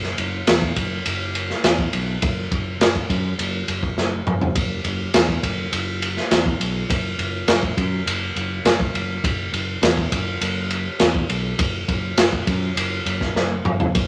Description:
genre	psychedelic rock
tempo	103 BPM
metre	4/4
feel	straight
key	unclear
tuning	A4 = 441 Hz
part	overdriven picked electric bass	bass	0.0-14.1 s	F#1 to F#2	-28 LUFS	equal	none
part	crunchy breakbeat drum kit	drums	0.0-14.1 s	kick drum, ride cymbal, snare drum, toms	-22 LUFS	equal	none
room	light reverb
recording	none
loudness	-22 LUFS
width	mono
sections	0.0-14.1 A section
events	drum fill 4.0-4.6, 13.4-14.0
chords	none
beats	0.47 1.06 1.64 | 2.23 2.81 3.39 3.98 | 4.56 5.14 5.73 6.31 | 6.90 7.48 8.07 8.65 | 9.24 9.83 10.41 11.00 | 11.59 12.18 12.77 13.36 | 13.95

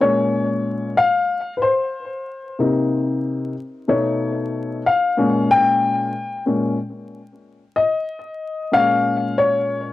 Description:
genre	hip hop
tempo	93 BPM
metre	4/4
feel	swing 61% on 16ths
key	Bb dorian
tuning	A4 = 445 Hz
part	dark upright piano	solo	0.0-9.9 s	Bb2 to G5	-18 LUFS	left 2 dB	cassette tape, tape echo
room	moderate booth ambience, RT60 0.2 s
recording	home recording on cassette, vinyl crackle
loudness	-17 LUFS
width	side -15 dB against mid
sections	0.0-9.9 A section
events	upright piano solo 0.0-9.9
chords	0.0 Bbm9; 2.6 Cm7; 3.9 B9; 5.2 Bbm7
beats	| 0.02 0.66 1.31 1.95 | 2.60 3.24 3.89 4.53 | 5.18 5.82 6.47 7.11 | 7.76 8.40 9.05 9.69

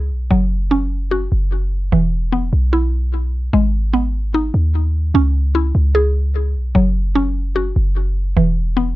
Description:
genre	hip hop, trap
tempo	149 BPM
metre	4/4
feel	half-time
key	C# minor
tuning	A4 = 440 Hz
part	mallet-like synth pluck	arpeggios	0.0-9.0 s	E3 to G#4	-19 LUFS	equal	chorus, low-pass filter, ping-pong delay
part	clean 808-style bass	bass	0.0-8.9 s	E1 to D#2	-17 LUFS	equal	none
room	little or no reverb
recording	dark, warm production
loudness	-15 LUFS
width	side -17 dB against mid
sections	0.0-5.1 A section; 5.1-9.0 B section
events	none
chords	0.3 F#5; 1.9 E5; 3.5 G#m; 5.1 C#m; 6.8 F#5; 8.4 E5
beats	| 0.31 0.71 1.12 1.52 | 1.92 2.33 2.73 3.13 | 3.53 3.94 4.34 4.74 | 5.14 5.55 5.95 6.35 | 6.75 7.16 7.56 7.96 | 8.37 8.77

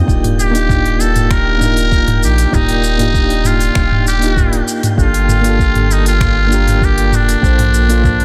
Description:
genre	sunset chillout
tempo	98 BPM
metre	4/4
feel	straight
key	Eb lydian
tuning	A4 = 440 Hz
part	soft electric-piano-like synth keys	accompaniment	0.0-8.2 s	Bb3 to D5	-20 LUFS	equal	chorus, tremolo
part	round analog bass	bass	0.0-8.2 s	Eb1 to Bb1	-17 LUFS	equal	none
part	wind-like tuned noise texture	texture	0.0-8.2 s	G5 to G6	-32 LUFS	equal	built-in reverb
part	electronic kick drum	drums	0.1-8.2 s	none	-18 LUFS	equal	none
part	smooth R&B drum kit	drums	0.1-8.2 s	finger snaps, hi-hat, shaker, toms	-22 LUFS	equal	soft clipping on snare
part	trumpet with metal mute	melody	0.4-8.2 s	D4 to Bb4	-20 LUFS	equal	digital delay
room	light reverb, digital ambience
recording	dense, heavily limited modern master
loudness	-13 LUFS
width	mono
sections	0.0-8.2 A section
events	none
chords	0.1 Ebmaj9; 5.0 Gm9; 7.4 Bbmaj9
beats	| 0.09 0.70 1.31 1.92 | 2.53 3.15 3.76 4.37 | 4.98 5.59 6.21 6.82 | 7.43 8.04

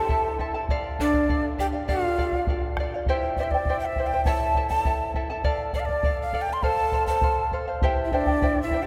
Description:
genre	andean folk, Andean ensemble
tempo	101 BPM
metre	2/4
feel	straight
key	D minor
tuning	A4 = 440 Hz
part	breathy quena	melody	0.0-8.9 s	D5 to C6	-30 LUFS	equal	none
part	breathy bright large pan pipes	second line	0.0-2.4, 6.6-8.9 s	D4 to A4	-31 LUFS	equal	none
part	charango	accompaniment	0.0-8.9 s	E4 to A5	-31 LUFS	equal	none
part	bombo	percussion	0.1-8.9 s	none	-30 LUFS	equal	none
room	wet cathedral reverb, RT60 5.3 s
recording	recorded in a church or concert hall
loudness	-25 LUFS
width	mono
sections	0.0-3.1 A section; 3.1-8.9 A section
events	none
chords	0.0 A5; 0.7 Dm; 3.1 C; 4.3 A; 5.4 Dm; 6.6 F; 7.8 C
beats	0.10 | 0.69 1.28 | 1.88 2.47 | 3.07 3.66 | 4.26 4.85 | 5.45 6.04 | 6.63 7.23 | 7.83 8.42

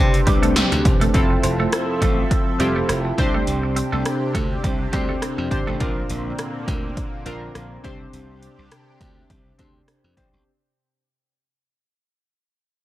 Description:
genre	1980s-style pop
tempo	103 BPM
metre	4/4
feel	swing 55% on 16ths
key	unclear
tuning	A4 = 441 Hz
part	chorused retro synth keys	accompaniment	0.0-10.5 s	Bb2 to C5	-25 LUFS	left 1 dB	none
part	lush unison pad	sustained chords	0.0-10.4 s	C3 to E5	-27 LUFS	equal	chorus, phaser
part	glassy slap bass	bass	0.0-10.4 s	E1 to C3	-25 LUFS	equal	none
part	80s electronic pad drums	drums	0.1-10.3 s	hi-hat, kick drum, rim click, snare drum	-21 LUFS	equal	overdrive, gated reverb
part	twelve-string electric guitar	riff	0.3-5.8 s	G3 to C4	-28 LUFS	right 4 dB	lush chorus, slapback echo
room	digital ambience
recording	none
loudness	-18 LUFS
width	side -15 dB against mid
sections	0.0-1.1 A section; 1.1-10.5 B section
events	fade-out 1.1-10.5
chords	0.0 Csus2; 1.1 Fmaj7; 3.2 Csus2; 5.8 Bbadd9; 7.8 Csus2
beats	0.56 | 1.14 1.73 2.31 2.89 | 3.47 4.06 4.64 5.22 | 5.80 6.39 6.97 7.55 | 8.13 8.72 9.30 9.88

